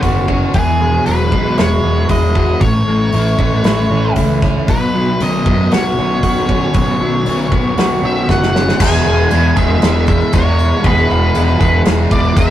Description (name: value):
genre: rock, shoegaze and dream pop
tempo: 116 BPM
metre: 4/4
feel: straight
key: E major from 8.8 s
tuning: A4 = 442 Hz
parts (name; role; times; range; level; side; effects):
- crunchy overdriven guitar; riff; 0.0-12.5 s; A2 to F#4; -17 LUFS; left 2 dB; none
- overdriven electric guitar; riff; 0.0-12.5 s; E2 to G#4; -20 LUFS; right 3 dB; none
- fuzz fingered electric bass; bass; 0.0-12.5 s; E1 to F#2; -16 LUFS; equal; overdrive
- loose indie drum kit; drums; 0.0-12.5 s; crash cymbal, hi-hat, kick drum, snare drum; -17 LUFS; equal; none
- octave-fuzz lead guitar; melody; 0.5-12.5 s; G#4 to G#5; -19 LUFS; equal; distortion
- tambourine; percussion; 8.9-12.5 s; none; -38 LUFS; right 5 dB; none
room: wet booth ambience, RT60 0.2 s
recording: rough rehearsal-room recording, warm saturation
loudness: -11 LUFS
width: side -12 dB against mid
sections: 0.0-8.8 A section; 8.8-12.5 B section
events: drum fill 8.3-8.8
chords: 0.0 Bsus2; 0.5 Eadd9; 2.6 A; 4.7 Bsus2; 8.8 E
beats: 0.03 | 0.55 1.06 1.58 2.10 | 2.61 3.13 3.65 4.17 | 4.68 5.20 5.71 6.23 | 6.75 7.26 7.78 8.29 | 8.80 9.31 9.82 10.34 | 10.84 11.35 11.86 12.37